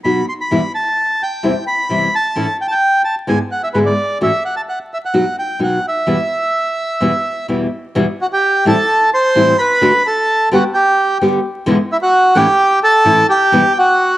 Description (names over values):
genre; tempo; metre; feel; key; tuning
tango; 129 BPM; 4/4; rubato; E minor; A4 = 440 Hz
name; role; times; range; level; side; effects
bandoneon; melody; 0.0-14.2 s; E4 to C6; -13 LUFS; right 1 dB; cassette tape
nylon-string guitar; accompaniment; 0.0-13.6 s; E2 to G#4; -16 LUFS; left 1 dB; cassette tape
room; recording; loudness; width
wet spring reverb, RT60 1.7 s, studio ambience; home recording on cassette, vinyl crackle; -12 LUFS; side -15 dB against mid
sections
0.0-8.0 A section; 8.0-14.2 B section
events
none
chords
0.0 B; 0.5 Em; 1.4 C/E; 2.4 A; 3.3 E7/G#; 4.2 A6; 5.1 B; 6.1 Em; 8.9 Am7; 9.8 D; 10.8 G; 11.7 E5; 12.6 A; 13.5 Em/B